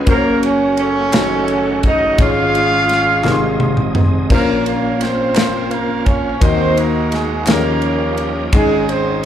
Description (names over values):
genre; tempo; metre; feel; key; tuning
slow gospel; 57 BPM (dotted quarters); 6/8; straight; unclear; A4 = 443 Hz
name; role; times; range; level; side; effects
dark horn section; melody; 0.0-9.3 s; Ab3 to F5; -17 LUFS; right 2 dB; slapback echo
warm concert grand piano; accompaniment; 0.0-9.3 s; Gb1 to C6; -18 LUFS; left 3 dB; slapback echo
bright tonewheel organ; sustained chords; 0.0-9.3 s; C3 to Ab4; -24 LUFS; right 5 dB; slow rotary speaker, chorus vibrato
modern studio drum kit; drums; 0.1-9.0 s; crash cymbal, kick drum, ride cymbal, snare drum, toms; -18 LUFS; equal; none
group handclap; percussion; 1.1-7.8 s; none; -29 LUFS; left 3 dB; none
room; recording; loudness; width
light reverb; live gig heard through the venue's PA, club reverb; -13 LUFS; side -10 dB against mid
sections
0.0-9.3 A section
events
drum fill 3.2-4.3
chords
0.1 Gb; 1.1 Gbm6; 2.2 Db/Ab; 3.2 Ab; 4.3 Bbm; 6.4 Ebm; 7.5 Eb9; 8.5 Absus4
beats
| 0.07 1.13 | 2.19 3.24 | 4.30 5.36 | 6.41 7.47 | 8.53